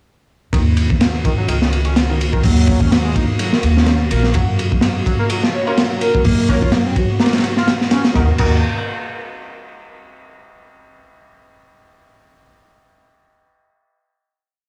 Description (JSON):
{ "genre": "breakbeat, breaks", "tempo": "126 BPM", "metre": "4/4", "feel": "swing 55% on 16ths", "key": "Eb minor", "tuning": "A4 = 441 Hz", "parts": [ { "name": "warbly tape-like pad", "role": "sustained chords", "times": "1.4-8.4 s", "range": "Db3 to Gb4", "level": "-30 LUFS", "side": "equal", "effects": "chorus, built-in reverb, sidechain pumping" }, { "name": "overdriven synth lead", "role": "riff", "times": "0.5-8.6 s", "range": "Db3 to Gb4", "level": "-26 LUFS", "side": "equal", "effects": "distortion, phaser, tube saturation, analog chorus, vintage 12-bit sampler grit, analog delay" }, { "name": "upright bass", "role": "bass", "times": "0.5-8.6 s", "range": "Bb1 to Gb2", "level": "-19 LUFS", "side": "equal", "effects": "none" }, { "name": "crunchy breakbeat drum kit", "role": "drums", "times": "0.5-8.5 s", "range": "crash cymbal, hi-hat, kick drum, ride cymbal, snare drum", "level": "-19 LUFS", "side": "equal", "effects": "none" }, { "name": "breathy flute-like synth lead", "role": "melody", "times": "5.5-6.7 s", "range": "Bb4 to Db5", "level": "-23 LUFS", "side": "equal", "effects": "chorus, old record sound, vintage 12-bit sampler grit, analog delay" }, { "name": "orchestra-hit-like synth stab", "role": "stabs", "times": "5.7-8.6 s", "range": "Db4 to Bb4", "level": "-28 LUFS", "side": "equal", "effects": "built-in reverb, analog delay" } ], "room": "little or no reverb", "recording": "dry, gritty hardware recording, cassette tape", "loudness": "-16 LUFS", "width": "mono", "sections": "0.5-8.2 drop; 8.2-10.1 final chord", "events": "drop 0.5-8.2", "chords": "0.5 Ebm; 4.3 Gb; 8.2 Ebm" }